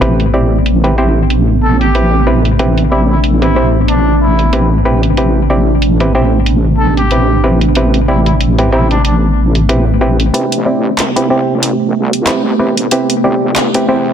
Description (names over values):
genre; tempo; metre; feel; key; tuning
glitch hop; 93 BPM; 4/4; swing 56% on 16ths; A minor; A4 = 440 Hz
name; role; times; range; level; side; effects
warbly tape-like pad; sustained chords; 0.0-14.1 s; C3 to G4; -16 LUFS; right 2 dB; chorus, built-in reverb, phaser
muted clav; stabs; 0.0-14.1 s; C4 to D5; -15 LUFS; right 1 dB; low-pass filter, ping-pong delay
wobble bass; bass; 0.0-14.1 s; G1 to E2; -13 LUFS; equal; chorus, tube saturation, high-pass filter
pop drum kit; drums; 0.0-13.9 s; handclaps, hi-hat, rim click; -18 LUFS; equal; low-pass filter on hats, low-pass filter on snare
breathy trumpet; melody; 1.6-9.2 s; D4 to A4; -18 LUFS; left 2 dB; ping-pong delay
room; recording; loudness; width
light reverb; dense, heavily limited modern master; -9 LUFS; side -8 dB against mid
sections
0.0-10.3 A section; 10.3-14.1 B section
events
build-up 10.3-14.1; filter sweep on clav 10.3-14.1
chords
0.0 Am9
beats
| 0.02 0.66 1.31 1.95 | 2.60 3.24 3.89 4.53 | 5.18 5.82 6.47 7.11 | 7.76 8.40 9.05 9.69 | 10.34 10.98 11.63 12.28 | 12.92 13.56